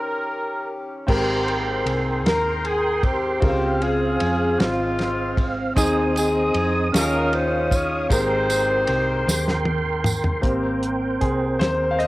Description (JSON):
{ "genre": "slow gospel", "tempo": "51 BPM (dotted quarters)", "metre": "6/8", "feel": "straight", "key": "Ab major", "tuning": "A4 = 440 Hz", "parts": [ { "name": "mellow saxophone section", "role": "melody", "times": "0.0-9.6 s", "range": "Ab3 to Db5", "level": "-23 LUFS", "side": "left 1 dB", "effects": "cassette tape" }, { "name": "warm trumpet", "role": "melody", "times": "0.0-0.8 s", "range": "Bb4", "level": "-30 LUFS", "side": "right 1 dB", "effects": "cassette tape" }, { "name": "clear grand piano", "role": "accompaniment", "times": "0.0-12.1 s", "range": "Ab2 to G5", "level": "-27 LUFS", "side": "equal", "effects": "cassette tape" }, { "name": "tonewheel organ", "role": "sustained chords", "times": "1.1-12.1 s", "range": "C4 to Eb6", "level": "-25 LUFS", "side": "right 2 dB", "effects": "chorus vibrato, slow rotary speaker, cassette tape" }, { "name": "hollow-body short-scale fingered electric bass", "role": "bass", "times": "1.1-12.1 s", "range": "Ab1 to F2", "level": "-27 LUFS", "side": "equal", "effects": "none" }, { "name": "warm soul drum kit", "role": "drums", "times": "1.1-12.1 s", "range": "crash cymbal, hi-hat, kick drum, ride cymbal, snare drum, toms", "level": "-25 LUFS", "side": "equal", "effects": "cassette tape" }, { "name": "tambourine", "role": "percussion", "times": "5.8-10.4 s", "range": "none", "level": "-30 LUFS", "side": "right 3 dB", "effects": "none" } ], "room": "light reverb, small room ambience", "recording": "home recording on cassette", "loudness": "-19 LUFS", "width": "side -18 dB against mid", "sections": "0.0-1.1 A section; 1.1-10.4 B section; 10.4-12.1 C section", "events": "break 0.0-1.1; drum fill 9.3-10.4; grand piano solo 10.4-12.1", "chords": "0.0 Eb7; 1.1 Abmaj9; 3.4 Dbmaj7; 5.8 Ab/Eb; 6.9 Eb9sus4; 8.1 Abmaj9" }